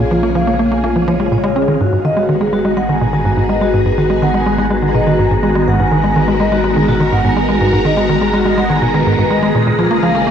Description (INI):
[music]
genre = ambient, sequencer-driven space music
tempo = 124 BPM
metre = 4/4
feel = straight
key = G# dorian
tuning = A4 = 440 Hz
[part]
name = phased string machine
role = sustained chords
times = 0.0-10.3 s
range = C#3 to A#4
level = -18 LUFS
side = right 1 dB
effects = ensemble chorus, phaser
[part]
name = vibraphone with medium mallets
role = arpeggios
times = 0.0-10.2 s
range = E#4 to G#5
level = -17 LUFS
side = left 1 dB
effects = auto-pan, analog delay
[part]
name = tight sequencer bass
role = riff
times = 0.0-10.3 s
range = G#2 to C#4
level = -15 LUFS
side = equal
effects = analog chorus, analog delay
[part]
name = warm sub bass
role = bass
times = 0.0-10.3 s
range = G#1 to A#1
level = -24 LUFS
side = right 1 dB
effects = tube saturation
[part]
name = wind-like tuned noise texture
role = texture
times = 0.0-10.3 s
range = E#5 to A#5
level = -24 LUFS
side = left 2 dB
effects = built-in reverb
[sound]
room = wet plate reverb, RT60 2.8 s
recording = worn, warbling old tape, cassette tape, warbly pitch drift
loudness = -12 LUFS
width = side -8 dB against mid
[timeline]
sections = 0.0-10.3 A section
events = none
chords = 0.0 A#m7; 1.8 G#m7; 9.5 A#m7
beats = 0.35 0.84 1.32 | 1.80 2.29 2.77 3.25 | 3.74 4.22 4.71 5.19 | 5.67 6.16 6.64 7.13 | 7.61 8.09 8.58 9.06 | 9.55 10.03